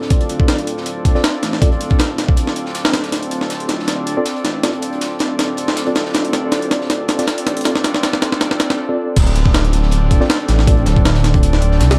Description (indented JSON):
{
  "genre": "drum and bass, jungle",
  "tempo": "159 BPM",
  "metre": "4/4",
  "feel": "swing 54% on 16ths",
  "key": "D minor",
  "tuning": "A4 = 440 Hz",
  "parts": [
    { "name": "warbly tape-like pad", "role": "sustained chords", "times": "0.0-12.0 s", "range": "C4 to D5", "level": "-24 LUFS", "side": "equal", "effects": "chorus, built-in reverb" },
    { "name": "mellow tine electric piano", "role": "stabs", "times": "0.0-1.7, 4.2-12.0 s", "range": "C4 to D5", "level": "-26 LUFS", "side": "equal", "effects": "dub echo" },
    { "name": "dark detuned saw bass", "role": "bass", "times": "0.0-12.0 s", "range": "D1 to C2", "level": "-22 LUFS", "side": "equal", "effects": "high-pass filter" },
    { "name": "crunchy breakbeat drum kit", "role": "drums", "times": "0.0-12.0 s", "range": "hi-hat, snare drum", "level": "-34 LUFS", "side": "equal", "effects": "none" },
    { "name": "breakbeat sampler-style drum kit", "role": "drums", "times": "0.1-12.0 s", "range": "crash cymbal, hi-hat, kick drum, snare drum", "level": "-19 LUFS", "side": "equal", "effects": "small room ambience" },
    { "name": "downlifter", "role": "sound effects", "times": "9.2-12.0 s", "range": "none", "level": "-35 LUFS", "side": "equal", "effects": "none" }
  ],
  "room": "light reverb",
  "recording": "dark, warm production",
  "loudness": "-17 LUFS",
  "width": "mono",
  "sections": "0.0-9.2 A section; 9.2-12.0 B section",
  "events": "build-up 0.0-9.2; drum fill 3.1-8.8; break 8.8-9.2; drop 9.2-12.0",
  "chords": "0.0 Dm7"
}